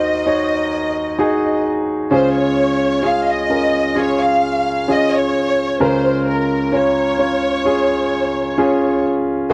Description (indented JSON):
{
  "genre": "pop ballad",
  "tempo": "65 BPM",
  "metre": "4/4",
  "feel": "straight",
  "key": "Db major",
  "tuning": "A4 = 440 Hz",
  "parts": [
    { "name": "rich studio violin section", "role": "melody", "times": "0.0-9.5 s", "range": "Bb4 to F5", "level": "-21 LUFS", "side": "equal", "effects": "none" },
    { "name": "clear baby grand piano", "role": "accompaniment", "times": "0.0-9.5 s", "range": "Db2 to Db5", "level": "-19 LUFS", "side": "equal", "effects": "none" }
  ],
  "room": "light reverb",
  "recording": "dry, close 1970s-style studio recording",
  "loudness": "-17 LUFS",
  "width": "mono",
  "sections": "0.0-9.5 A section",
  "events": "none",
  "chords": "0.0 Ebm; 2.1 Db",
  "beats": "0.26 1.19 | 2.11 3.03 3.96 4.88 | 5.80 6.72 7.65 8.57 | 9.49"
}